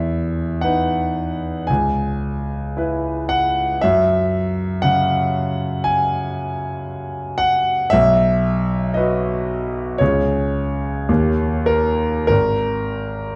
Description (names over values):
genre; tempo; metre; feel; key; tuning
classical, romantic nocturne for solo piano; 47-60 BPM; 4/4; rubato; unclear; A4 = 439 Hz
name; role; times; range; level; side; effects
warm concert grand piano; solo; 0.0-13.4 s; G#1 to G#5; -20 LUFS; equal; none
room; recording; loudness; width
moderate recital hall reverb, RT60 1.4 s; dark, warm production; -19 LUFS; mono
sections
0.0-13.4 A section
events
none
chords
0.0 E5; 1.7 C#m7; 3.8 F#5; 7.9 B; 10.0 C#5; 11.1 D#7; 12.3 N.C.